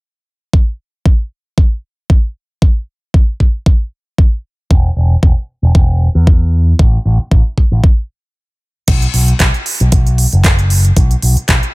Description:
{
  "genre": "nu-disco, nu disco",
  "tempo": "115 BPM",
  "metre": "4/4",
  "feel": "swing 55% on 16ths",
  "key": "unclear",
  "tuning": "A4 = 441 Hz",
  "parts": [
    { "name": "electronic kick drum", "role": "drums", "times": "0.5-11.6 s", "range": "none", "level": "-10 LUFS", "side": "equal", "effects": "none" },
    { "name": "picked electric bass with an envelope filter", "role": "bass", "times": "4.7-11.6 s", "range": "E1 to E2", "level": "-11 LUFS", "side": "equal", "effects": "sidechain pumping" },
    { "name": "pop drum kit", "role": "drums", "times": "8.9-11.7 s", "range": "crash cymbal, handclaps, hi-hat", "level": "-17 LUFS", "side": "right 1 dB", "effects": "none" }
  ],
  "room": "little or no reverb",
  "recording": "none",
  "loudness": "-10 LUFS",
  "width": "side -23 dB against mid",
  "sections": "0.5-8.9 A section; 8.9-11.7 B section",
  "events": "break 8.4-8.9",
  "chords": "none",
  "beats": "| 0.53 1.05 1.58 2.10 | 2.62 3.14 3.66 4.19 | 4.71 5.23 5.75 6.27 | 6.79 7.32 7.84 8.36 | 8.88 9.40 9.93 10.45 | 10.97 11.49"
}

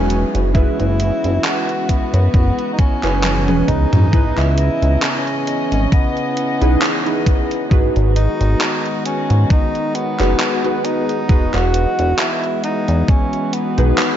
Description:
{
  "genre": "vaporwave",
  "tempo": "67 BPM",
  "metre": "4/4",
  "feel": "swing 55% on 16ths",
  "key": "unclear",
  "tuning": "A4 = 440 Hz",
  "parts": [
    { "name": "breathy tenor saxophone", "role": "melody", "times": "0.0-14.2 s", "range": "B3 to F#4", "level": "-22 LUFS", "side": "equal", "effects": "tape echo" },
    { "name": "warbly lo-fi synth keys", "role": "accompaniment", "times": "0.0-14.2 s", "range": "E3 to D#5", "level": "-22 LUFS", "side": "right 1 dB", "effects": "wide subtle chorus, tape echo" },
    { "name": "dark studio string section", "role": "sustained chords", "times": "0.0-14.2 s", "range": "C#3 to D#5", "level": "-25 LUFS", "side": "left 1 dB", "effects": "vintage 12-bit sampler grit" },
    { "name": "chorused synth bass", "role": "bass", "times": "0.0-13.9 s", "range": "E1 to G#2", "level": "-16 LUFS", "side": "equal", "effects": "none" },
    { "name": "gated 80s digital drum machine", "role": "drums", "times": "0.1-14.2 s", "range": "handclaps, hi-hat, toms", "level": "-22 LUFS", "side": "equal", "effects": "gated reverb, overdrive, vintage 12-bit sampler grit" },
    { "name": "electronic kick drum", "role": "drums", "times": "0.5-13.3 s", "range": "none", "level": "-14 LUFS", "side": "equal", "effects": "overdrive, vintage 12-bit sampler grit" }
  ],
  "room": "moderate plate reverb, RT60 3.6 s",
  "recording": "dreamy mix soaked in reverb, nothing above 7.5 kHz",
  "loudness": "-14 LUFS",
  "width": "side -10 dB against mid",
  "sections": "0.0-4.1 A section; 4.1-14.2 B section",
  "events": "drum fill 3.2-4.1",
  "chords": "0.0 Emaj7; 0.5 F#9sus4; 4.1 C#m9; 7.7 G#m7; 11.3 Emaj7",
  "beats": "| 0.55 1.45 2.34 3.24 | 4.13 5.03 5.92 6.82 | 7.71 8.61 9.50 10.40 | 11.29 12.19 13.09 13.98"
}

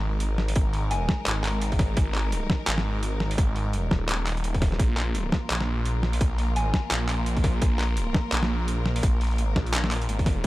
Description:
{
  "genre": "half-time drum and bass",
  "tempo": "170 BPM",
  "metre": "4/4",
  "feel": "swing 59% on 16ths, half-time",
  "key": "unclear",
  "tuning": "A4 = 440 Hz",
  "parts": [
    { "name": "clear symphonic string section", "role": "sustained chords", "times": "0.0-10.5 s", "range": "G#3 to A#4", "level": "-34 LUFS", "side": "equal", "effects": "sidechain pumping" },
    { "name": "phased detuned saw bass", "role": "bass", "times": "0.0-10.5 s", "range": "D#1 to A#1", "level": "-26 LUFS", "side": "equal", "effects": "phaser" },
    { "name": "boom bap sampler-style drum kit", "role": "drums", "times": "0.2-10.5 s", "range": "handclaps, hi-hat, snare drum", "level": "-29 LUFS", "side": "equal", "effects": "overdrive" },
    { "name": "electronic kick drum", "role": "drums", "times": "0.6-10.5 s", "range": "none", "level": "-24 LUFS", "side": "equal", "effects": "overdrive" },
    { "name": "soft synth bell", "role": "melody", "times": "0.9-1.3, 6.6-6.9 s", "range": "G#5", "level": "-36 LUFS", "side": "left 1 dB", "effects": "chorus, digital delay" }
  ],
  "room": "digital ambience",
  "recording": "dark, warm production",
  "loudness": "-23 LUFS",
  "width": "side -18 dB against mid",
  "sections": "0.0-10.5 A section",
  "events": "none",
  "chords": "0.0 G#5; 4.8 A#5",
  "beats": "0.21 | 0.56 0.91 1.26 1.62 | 1.97 2.32 2.68 3.03 | 3.38 3.73 4.09 4.44 | 4.79 5.15 5.50 5.85 | 6.21 6.56 6.91 7.26 | 7.62 7.97 8.32 8.68 | 9.03 9.38 9.73 10.09 | 10.44"
}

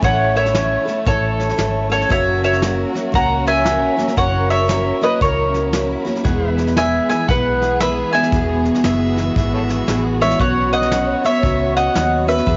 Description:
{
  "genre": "honky-tonk and classic country",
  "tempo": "116 BPM",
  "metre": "4/4",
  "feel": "swing 63% on 8ths",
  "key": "E major",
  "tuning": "A4 = 440 Hz",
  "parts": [
    { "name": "mandolin", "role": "melody", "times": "0.0-12.6 s", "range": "A4 to A#5", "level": "-20 LUFS", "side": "equal", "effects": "none" },
    { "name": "picked steel-string acoustic guitar", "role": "accompaniment", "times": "0.0-12.6 s", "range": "E2 to A4", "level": "-23 LUFS", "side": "equal", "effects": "cassette tape" },
    { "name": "warm symphonic violin section", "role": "sustained chords", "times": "0.0-12.6 s", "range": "A3 to C#5", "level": "-29 LUFS", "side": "equal", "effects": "cassette tape" },
    { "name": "vintage muted fingered electric bass", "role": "bass", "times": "0.0-12.6 s", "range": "E1 to E2", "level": "-25 LUFS", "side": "equal", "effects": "none" },
    { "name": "soft brush drum kit", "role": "drums", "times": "0.0-12.6 s", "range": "hi-hat, kick drum, snare drum", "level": "-26 LUFS", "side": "equal", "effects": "vintage 12-bit sampler grit" },
    { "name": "pedal steel guitar", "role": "sustained chords", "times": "6.2-12.6 s", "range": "B4 to E5", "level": "-36 LUFS", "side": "equal", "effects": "none" },
    { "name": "overdriven harmonica", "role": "second line", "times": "8.8-10.0 s", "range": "A4 to E5", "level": "-30 LUFS", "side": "equal", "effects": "cassette tape" }
  ],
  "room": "light reverb, small room ambience",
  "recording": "home recording on cassette, nothing above 7.5 kHz",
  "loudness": "-17 LUFS",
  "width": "mono",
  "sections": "0.0-12.6 A section",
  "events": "none",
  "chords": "0.0 A; 2.1 F#; 6.3 E; 10.4 Bsus2",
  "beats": "| 0.03 0.55 1.07 1.58 | 2.10 2.62 3.14 3.66 | 4.18 4.70 5.22 5.73 | 6.25 6.77 7.29 7.81 | 8.33 8.84 9.36 9.88 | 10.40 10.92 11.44 11.95 | 12.47"
}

